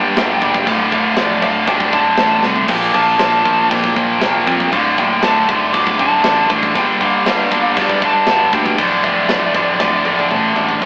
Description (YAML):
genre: heavy metal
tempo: 118 BPM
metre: 4/4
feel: straight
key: D minor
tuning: A4 = 441 Hz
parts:
  - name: high-gain lead guitar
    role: melody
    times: 0.0-10.3 s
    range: D5 to D6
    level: -20 LUFS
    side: equal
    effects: distortion
  - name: high-gain lead guitar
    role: second line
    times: 0.0-10.3 s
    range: F3 to F4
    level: -32 LUFS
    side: equal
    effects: none
  - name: high-gain distorted guitar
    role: riff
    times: 0.0-10.9 s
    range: D2 to Bb3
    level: -17 LUFS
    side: equal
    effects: distortion
  - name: fingered electric bass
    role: bass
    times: 0.0-10.9 s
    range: D1 to F2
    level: -30 LUFS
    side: equal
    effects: none
  - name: tight metal drum kit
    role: drums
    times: 0.2-10.9 s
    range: china cymbal, crash cymbal, hi-hat, kick drum, snare drum, toms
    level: -23 LUFS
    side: equal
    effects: none
room: light reverb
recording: rough rehearsal-room recording, AM radio sound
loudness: -15 LUFS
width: mono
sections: 0.0-10.8 A section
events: drum fill 2.4, 9.8-10.8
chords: 0.0 Gm; 0.7 D5; 2.7 Bb; 4.7 D5; 6.8 Gm; 8.8 Dm